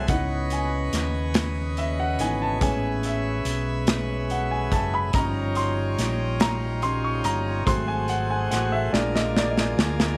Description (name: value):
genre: slow gospel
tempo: 48 BPM (dotted quarters)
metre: 6/8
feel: straight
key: unclear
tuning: A4 = 441 Hz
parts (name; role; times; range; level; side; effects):
- warm baby grand piano; accompaniment; 0.0-10.2 s; E3 to C#6; -30 LUFS; equal; none
- pipe organ, plenum; sustained chords; 0.0-10.2 s; A3 to C#6; -35 LUFS; equal; none
- tonewheel organ; sustained chords; 0.0-10.2 s; C#3 to D#5; -34 LUFS; equal; slow rotary speaker
- fingered electric bass; bass; 0.0-10.2 s; F#1 to D#2; -30 LUFS; equal; none
- modern studio drum kit; drums; 0.1-10.2 s; hi-hat, kick drum, snare drum; -28 LUFS; equal; none
room: light reverb, small room ambience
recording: none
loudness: -25 LUFS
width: mono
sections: 0.0-10.2 A section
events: grand piano solo 0.0-10.2; drum fill 8.9-10.2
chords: 0.1 C#m9; 2.6 Amaj9; 5.1 D#9/G; 7.7 G#7b9; 8.9 A#7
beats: | 0.09 1.35 | 2.62 3.88 | 5.14 6.41 | 7.67 8.93